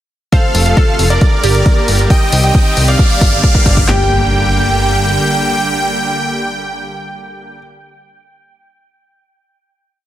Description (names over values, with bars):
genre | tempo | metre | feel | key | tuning
uplifting trance | 135 BPM | 4/4 | straight | G minor | A4 = 440 Hz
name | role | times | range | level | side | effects
supersaw chords | melody | 0.3-7.6 s | A4 to G5 | -17 LUFS | right 1 dB | sidechain pumping, dub echo
bright grand piano | second line | 0.3-7.6 s | D5 to G5 | -25 LUFS | right 2 dB | none
glassy wavetable pluck | second line | 0.3-7.6 s | G4 to C5 | -22 LUFS | equal | chorus, dub echo
supersaw pad | sustained chords | 0.3-7.6 s | C3 to G4 | -20 LUFS | equal | sidechain pumping
electronic hi-hat | drums | 0.3-3.9 s | none | -21 LUFS | left 3 dB | overdrive, sidechain pumping on hats
punchy analog drum machine | drums | 0.3-4.0 s | handclaps, kick drum, snare drum | -11 LUFS | equal | overdrive
riser and impact | sound effects | 1.3-7.6 s | none | -22 LUFS | equal | none
plucky analog bass | bass | 0.5-5.2 s | F1 to C2 | -14 LUFS | equal | sidechain pumping
room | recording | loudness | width
light reverb, digital ambience | dense, heavily limited modern master | -10 LUFS | side -13 dB against mid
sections
0.3-3.9 build; 3.9-7.4 final chord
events
build-up 0.3-3.9; riser 1.3-3.9; drum fill 2.1-3.9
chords
0.3 F; 1.2 Gm; 2.1 Cm; 3.0 Gm